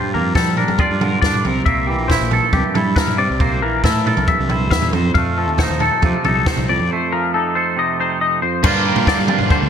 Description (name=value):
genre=math rock and midwest emo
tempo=137 BPM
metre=4/4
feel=straight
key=unclear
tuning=A4 = 439 Hz
part: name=twangy electric guitar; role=accompaniment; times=0.0-9.7 s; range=F2 to A4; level=-20 LUFS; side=right 6 dB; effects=lush chorus
part: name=twangy electric guitar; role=arpeggios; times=0.0-9.7 s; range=F4 to F5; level=-20 LUFS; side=left 7 dB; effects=analog chorus
part: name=fuzz fingered electric bass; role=bass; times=0.0-9.7 s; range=Bb1 to F3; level=-22 LUFS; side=equal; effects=overdrive
part: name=compact cocktail drum kit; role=drums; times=0.4-9.6 s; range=crash cymbal, kick drum, snare drum, toms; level=-19 LUFS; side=equal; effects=gated reverb
part: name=cranked stack guitar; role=riff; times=8.6-9.7 s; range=G2 to D4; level=-19 LUFS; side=right 2 dB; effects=overdrive
room=moderate lush hall reverb, RT60 2.0 s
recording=bright 1980s-style digital production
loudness=-14 LUFS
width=side -8 dB against mid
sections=0.0-8.6 A section; 8.6-9.7 B section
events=none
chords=0.0 Gm7; 1.4 C7; 4.9 F7; 8.6 Gm7